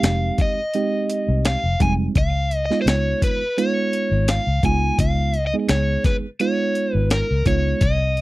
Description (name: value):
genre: straight-eighth soul blues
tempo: 85 BPM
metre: 4/4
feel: swing 54% on 16ths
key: unclear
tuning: A4 = 439 Hz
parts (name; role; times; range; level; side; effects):
- overdriven semi-hollow guitar; melody; 0.0-8.2 s; Bb4 to Ab5; -23 LUFS; left 1 dB; slapback echo
- bright reed electric piano; accompaniment; 0.0-7.8 s; G3 to Ab4; -24 LUFS; right 5 dB; overdrive
- vintage muted fingered electric bass; bass; 0.0-8.2 s; F1 to Db2; -21 LUFS; left 1 dB; none
- breakbeat sampler-style drum kit; drums; 0.0-8.2 s; hi-hat, kick drum, snare drum; -21 LUFS; left 1 dB; none
room: little or no reverb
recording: dry, close 1970s-style studio recording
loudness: -18 LUFS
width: side -18 dB against mid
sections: 0.0-8.2 A section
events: none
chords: 0.0 Fm7; 2.2 Db7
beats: 0.04 0.74 1.45 | 2.16 2.87 3.57 4.28 | 4.99 5.70 6.40 7.11 | 7.82